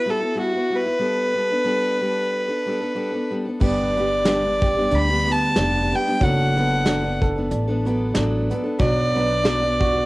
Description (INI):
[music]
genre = acoustic folk duo or small band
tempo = 92 BPM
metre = 4/4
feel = swing 55% on 8ths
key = unclear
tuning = A4 = 441 Hz
[part]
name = warm fiddle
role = melody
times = 0.0-10.1 s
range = F#4 to B5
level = -21 LUFS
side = equal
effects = cassette tape, plate reverb
[part]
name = picked steel-string acoustic guitar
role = accompaniment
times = 0.0-10.1 s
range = G2 to A4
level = -25 LUFS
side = left 2 dB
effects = cassette tape
[part]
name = clear upright piano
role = arpeggios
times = 3.6-10.1 s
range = F#3 to A4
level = -27 LUFS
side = right 3 dB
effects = cassette tape, plate reverb
[part]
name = upright bass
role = bass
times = 3.6-10.1 s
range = F1 to D2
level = -24 LUFS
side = equal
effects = none
[part]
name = soft brush drum kit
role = drums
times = 3.6-9.9 s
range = crash cymbal, hi-hat, kick drum, snare drum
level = -24 LUFS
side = equal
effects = none
[sound]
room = light reverb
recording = home recording on cassette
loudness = -18 LUFS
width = side -20 dB against mid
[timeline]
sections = 0.0-3.6 A section; 3.6-10.1 B section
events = none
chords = 0.0 Emadd9/G; 1.0 Gadd9; 3.6 G; 6.2 D6/F#; 8.8 Bm